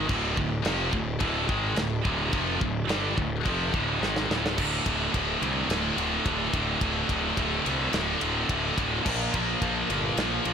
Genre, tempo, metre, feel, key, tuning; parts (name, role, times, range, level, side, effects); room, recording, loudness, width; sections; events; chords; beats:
heavy metal; 107 BPM; 4/4; straight; D minor; A4 = 441 Hz
scooped high-gain guitar; riff; 0.0-10.5 s; D2 to Bb3; -30 LUFS; left 12 dB; distortion
scooped high-gain guitar; riff; 0.0-10.5 s; D2 to Bb3; -29 LUFS; right 11 dB; distortion
fuzz picked electric bass; bass; 0.0-10.5 s; D1 to C2; -31 LUFS; equal; overdrive
tight metal drum kit; drums; 0.1-10.5 s; crash cymbal, kick drum, ride cymbal, snare drum; -31 LUFS; left 1 dB; soft clipping on kick, soft clipping on snare
light reverb; blown-out, overdriven recording, overdrive; -24 LUFS; side -7 dB against mid
0.0-4.6 A section; 4.6-10.5 B section
drum fill 4.0-4.6; half time 4.6-10.5
0.0 Dm; 4.6 D5; 9.0 Bb5
| 0.10 0.65 1.21 1.77 | 2.33 2.89 3.45 4.01 | 4.57 5.13 5.69 6.25 | 6.80 7.36 7.92 8.48 | 9.04 9.60 10.16